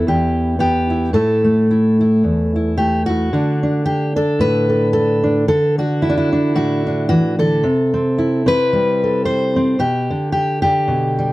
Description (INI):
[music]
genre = folk, solo fingerstyle acoustic guitar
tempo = 111 BPM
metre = 4/4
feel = swing 56% on 8ths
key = unclear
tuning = A4 = 440 Hz
[part]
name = fingerpicked steel-string acoustic guitar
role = solo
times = 0.0-11.3 s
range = E2 to C5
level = -14 LUFS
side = equal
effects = none
[sound]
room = light reverb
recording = dry, close 1970s-style studio recording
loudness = -14 LUFS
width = side -18 dB against mid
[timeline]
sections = 0.0-3.3 A section; 3.3-11.3 B section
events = none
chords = 0.0 Em; 1.1 A5; 3.3 D; 7.6 C6; 9.8 G/B